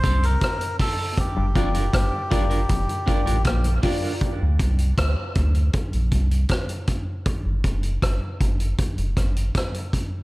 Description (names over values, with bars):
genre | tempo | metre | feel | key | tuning
dub reggae | 79 BPM | 4/4 | straight | unclear | A4 = 439 Hz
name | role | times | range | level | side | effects
melodica | melody | 0.0-3.4 s | G4 to C5 | -28 LUFS | equal | dub echo
electric guitar at the edge of break-up | accompaniment | 0.0-4.1 s | C4 to Bb4 | -32 LUFS | right 6 dB | high-pass filter, dub echo
tonewheel organ | accompaniment | 0.0-4.1 s | G2 to F4 | -37 LUFS | left 1 dB | none
overdriven clav | riff | 0.0-3.7 s | F2 to C3 | -32 LUFS | left 4 dB | auto-wah, dub echo
clear baby grand piano | stabs | 0.0-4.0 s | F4 to D5 | -33 LUFS | left 5 dB | high-pass filter, dub echo
warm sub bass | bass | 0.0-9.5 s | F1 to D2 | -21 LUFS | equal | none
vintage drum kit | drums | 0.0-10.1 s | hi-hat, kick drum, rim click | -24 LUFS | equal | none
room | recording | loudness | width
small room reverb | none | -20 LUFS | side -20 dB against mid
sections
0.0-4.2 A section; 4.2-10.2 B section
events
none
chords
0.0 D7sus4; 1.2 Gm7; 4.2 Bbadd9 (rootless); 7.3 Fsus2